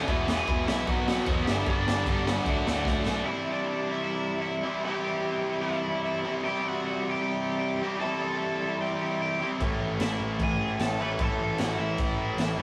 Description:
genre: punk rock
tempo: 151 BPM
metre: 4/4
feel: straight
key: unclear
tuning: A4 = 437 Hz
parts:
  - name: cranked stack guitar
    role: melody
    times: 0.0-12.6 s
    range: B3 to B5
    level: -35 LUFS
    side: equal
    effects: overdrive
  - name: distorted electric guitar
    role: riff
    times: 0.0-12.6 s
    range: G2 to E4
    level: -36 LUFS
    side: equal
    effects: overdrive
  - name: scooped high-gain guitar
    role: riff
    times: 0.0-3.3 s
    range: E2 to D4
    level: -37 LUFS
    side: equal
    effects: distortion
  - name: tight distorted guitar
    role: riff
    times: 0.0-12.6 s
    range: E2 to D4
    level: -33 LUFS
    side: equal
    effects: distortion
  - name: picked electric bass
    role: bass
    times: 0.0-3.2, 9.6-12.6 s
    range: E1 to E2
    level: -36 LUFS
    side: equal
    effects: none
  - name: raw garage drum kit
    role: drums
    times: 0.1-3.1, 9.6-12.5 s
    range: crash cymbal, kick drum, snare drum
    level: -32 LUFS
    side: equal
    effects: none
room: moderate stone room reverb, RT60 1.2 s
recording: rough rehearsal-room recording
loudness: -28 LUFS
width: mono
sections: 0.0-3.3 A section; 3.3-12.6 B section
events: drum fill 2.9-3.3; half time 3.3-12.6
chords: 0.1 E; 0.9 B; 1.5 G; 2.5 D; 3.3 C; 9.6 A

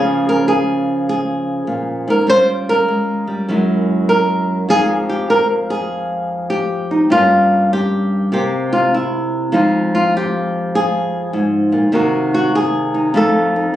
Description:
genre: solo jazz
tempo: 99 BPM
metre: 4/4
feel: swing 67% on 8ths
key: F minor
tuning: A4 = 440 Hz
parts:
  - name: flamenco guitar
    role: solo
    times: 0.0-13.8 s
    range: F2 to C5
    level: -14 LUFS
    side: equal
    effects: none
room: moderate large studio reverb, RT60 0.8 s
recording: recorded on a phone in the room, club reverb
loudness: -14 LUFS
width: side -12 dB against mid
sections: 0.0-9.5 A section; 9.5-13.8 B section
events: nylon-string guitar solo 9.5-13.8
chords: 0.0 Db6; 2.3 Gm7b5; 3.5 Gb9; 4.7 Fm9; 7.1 Gm7b5; 8.3 C7; 9.5 Fm7; 11.9 Cm7b5; 13.1 F7

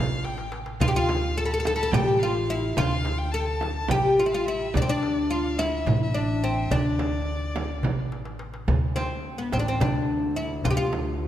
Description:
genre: Turkish makam ensemble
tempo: 213 BPM (eighths)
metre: 7/8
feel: straight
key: D makam huseyni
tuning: A4 = 441 Hz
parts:
  - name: oud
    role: melody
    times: 0.0-11.3 s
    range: B3-30c to A4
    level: -26 LUFS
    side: left 2 dB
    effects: none
  - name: rich violin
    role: second line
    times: 0.0-8.1 s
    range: D5 to B5-31c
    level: -34 LUFS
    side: left 3 dB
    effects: none
  - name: upright bass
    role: bass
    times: 0.0-11.3 s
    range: A1 to D2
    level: -29 LUFS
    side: equal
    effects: none
  - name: darbuka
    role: percussion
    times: 0.2-11.1 s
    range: none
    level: -30 LUFS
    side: equal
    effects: none
  - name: frame drum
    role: percussion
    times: 0.8-11.1 s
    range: none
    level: -31 LUFS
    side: right 4 dB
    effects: none
  - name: rich double bass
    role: drone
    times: 8.7-11.3 s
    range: D2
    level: -36 LUFS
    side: equal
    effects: none
room: moderate concert hall reverb, RT60 2.2 s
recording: none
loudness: -22 LUFS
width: side -11 dB against mid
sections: 0.0-8.7 A section; 8.7-11.3 B section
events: drum fill 0.2-0.8, 8.1-8.7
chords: none

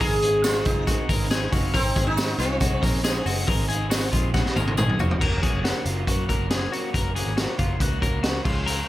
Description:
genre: jangly indie pop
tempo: 139 BPM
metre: 4/4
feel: straight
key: unclear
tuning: A4 = 441 Hz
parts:
  - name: sitar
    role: melody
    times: 0.0-4.7 s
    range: C4 to Ab4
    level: -27 LUFS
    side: equal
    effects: tape echo
  - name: overdriven combo organ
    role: accompaniment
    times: 0.0-8.8 s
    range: C4 to Ab5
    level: -34 LUFS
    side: left 6 dB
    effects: none
  - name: raw garage guitar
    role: accompaniment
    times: 0.0-8.9 s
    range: Gb2 to Eb4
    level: -33 LUFS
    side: right 9 dB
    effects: overdrive
  - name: twelve-string electric guitar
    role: arpeggios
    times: 0.0-8.9 s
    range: F4 to Bb4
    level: -30 LUFS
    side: left 5 dB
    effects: tape echo
  - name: vintage muted picked electric bass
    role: bass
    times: 0.0-8.8 s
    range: F1 to Gb2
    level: -28 LUFS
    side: equal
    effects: none
  - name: raw garage drum kit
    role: drums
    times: 0.0-8.8 s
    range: crash cymbal, hi-hat, kick drum, snare drum, toms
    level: -24 LUFS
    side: equal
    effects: none
  - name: tambourine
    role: percussion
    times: 0.0-5.1 s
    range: none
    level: -39 LUFS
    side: right 9 dB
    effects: none
room: light reverb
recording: none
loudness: -21 LUFS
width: side -15 dB against mid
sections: 0.0-5.2 A section; 5.2-8.9 B section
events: transistor combo organ fill 1.1-1.7; drum fill 4.3-5.2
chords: 0.0 Ab; 5.2 Gb

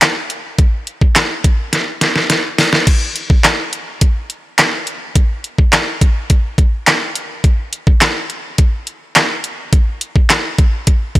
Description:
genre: pop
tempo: 105 BPM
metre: 4/4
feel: straight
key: none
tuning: none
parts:
  - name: pop drum kit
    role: drums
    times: 0.0-11.2 s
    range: crash cymbal, handclaps, hi-hat, kick drum, snare drum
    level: -12 LUFS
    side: equal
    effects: overdrive
room: little or no reverb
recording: dry, gritty hardware recording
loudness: -12 LUFS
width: side -17 dB against mid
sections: 0.0-2.9 A section; 2.9-11.2 B section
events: drum fill 1.7-2.9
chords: none

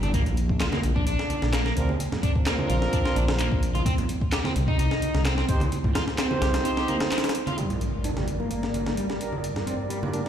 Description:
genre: breakbeat, breaks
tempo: 129 BPM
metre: 4/4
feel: straight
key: G minor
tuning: A4 = 440 Hz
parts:
  - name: crunchy overdriven guitar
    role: riff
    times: 0.0-10.2 s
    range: G3 to G4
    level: -30 LUFS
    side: left 1 dB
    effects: vintage 12-bit sampler grit, low-pass filter, digital delay
  - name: clear brass ensemble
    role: stabs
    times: 0.0-10.3 s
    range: Bb3 to C5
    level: -30 LUFS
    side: right 2 dB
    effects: low-pass filter, digital delay
  - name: dark detuned saw bass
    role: bass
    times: 0.0-6.6 s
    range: G1 to Eb2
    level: -25 LUFS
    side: equal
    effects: none
  - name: breakbeat sampler-style drum kit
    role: drums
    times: 0.0-10.3 s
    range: hi-hat, kick drum, snare drum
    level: -28 LUFS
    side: equal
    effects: high-pass filter on kick, high-pass filter on hats, high-pass filter on snare
  - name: congas and bongos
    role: percussion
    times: 0.0-10.1 s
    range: none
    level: -32 LUFS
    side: right 2 dB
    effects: none
  - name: electronic handclaps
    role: drums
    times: 0.6-7.2 s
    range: none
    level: -35 LUFS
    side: equal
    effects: low-pass filter on snare
  - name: phased analog pad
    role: sustained chords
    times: 7.6-10.3 s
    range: G2 to D5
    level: -33 LUFS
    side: equal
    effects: phaser, chorus, vintage 12-bit sampler grit, sidechain pumping
  - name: impact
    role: sound effects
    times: 7.6-9.4 s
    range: none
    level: -32 LUFS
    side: equal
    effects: none
room: light reverb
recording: played on a big sound system in a bare room, large studio reverb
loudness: -23 LUFS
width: side -9 dB against mid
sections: 0.0-7.6 A section; 7.6-10.3 B section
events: band accent 7.1; impact 7.6-9.4; filter sweep on overdriven electric guitar 7.6-10.3; filter sweep on brass ensemble 7.6-10.3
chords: 0.1 Bbadd9; 3.9 Cm; 7.6 Gm

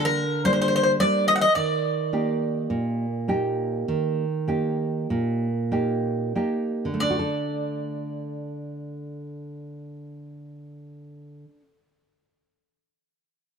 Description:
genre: greek folk, Greek bouzouki band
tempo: 90-110 BPM (eighths)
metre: 9/8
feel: straight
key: unclear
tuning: A4 = 440 Hz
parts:
  - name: Greek bouzouki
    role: melody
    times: 0.0-11.6 s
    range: Bb4 to F#5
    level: -23 LUFS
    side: left 1 dB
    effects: none
  - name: nylon-string guitar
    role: accompaniment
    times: 0.0-11.8 s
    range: Bb2 to A4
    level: -25 LUFS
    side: right 2 dB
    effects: none
room: light reverb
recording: dark, warm production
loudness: -22 LUFS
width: side -6 dB against mid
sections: 0.0-7.0 A section; 7.0-13.0 B section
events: slowing down 0.0-7.0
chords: 0.0 Gm; 1.6 Eb; 7.0 D5

